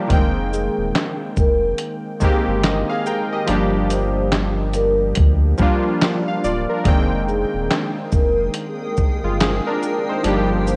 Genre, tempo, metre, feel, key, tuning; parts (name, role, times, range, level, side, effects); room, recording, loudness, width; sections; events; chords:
lo-fi hip hop; 71 BPM; 4/4; swing 60% on 16ths; F dorian; A4 = 440 Hz
warm analog keys; accompaniment; 0.0-10.8 s; Eb3 to G5; -23 LUFS; equal; chorus, cassette tape
warm sub bass; bass; 0.1-10.8 s; D1 to D2; -25 LUFS; equal
dusty soul sampler-style drum kit; drums; 0.1-10.8 s; handclaps, hi-hat, kick drum, shaker, snare drum; -22 LUFS; equal
vibraphone with soft mallets; melody; 0.5-10.8 s; Ab4 to C5; -26 LUFS; equal; analog delay
granular cloud pad; sustained chords; 7.7-10.8 s; Ab4 to Eb6; -31 LUFS; equal; built-in reverb
moderate plate reverb, RT60 2.2 s; worn, warbling old tape, cassette tape, warbly pitch drift; -19 LUFS; mono
0.0-10.8 A section
0.1 Fm11; 3.5 Gm7; 6.9 Fm11; 10.2 Gm7